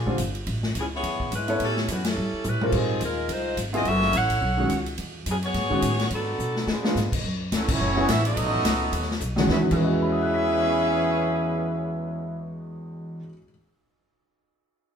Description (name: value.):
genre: jazz, big band swing.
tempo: 213 BPM.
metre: 4/4.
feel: swing 59% on 8ths.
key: E major.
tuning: A4 = 440 Hz.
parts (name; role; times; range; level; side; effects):
warm saxophone section; melody; 0.0-7.1 s; E3 to F#5; -27 LUFS; equal; none.
upright bass; bass; 0.0-13.2 s; F#1 to C#3; -29 LUFS; equal; none.
warm concert grand piano; accompaniment; 0.1-13.5 s; E2 to B6; -26 LUFS; equal; none.
swinging big-band drum kit; drums; 0.1-9.8 s; crash cymbal, hi-hat, kick drum, ride cymbal, snare drum, toms; -29 LUFS; left 1 dB; none.
clear trombone section; second line; 6.7-12.5 s; B2 to G#4; -29 LUFS; right 2 dB; none.
clear trumpet section; melody; 7.5-12.5 s; F#3 to E5; -26 LUFS; equal; none.
room: wet stone room reverb, RT60 1.0 s.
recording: band playing live in one room.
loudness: -22 LUFS.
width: side -7 dB against mid.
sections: 0.0-7.2 A section; 7.2-9.5 B section; 9.5-11.7 C section.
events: band accent 2.0, 7.7; drum fill 2.4, 6.4-7.0, 9.2.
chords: 0.5 Amaj9; 1.6 A13; 2.7 G#6; 3.9 F#m7; 4.4 B13; 5.0 E69; 6.1 G#m7b5; 6.7 C#7b9; 7.2 F#m7; 9.5 E69.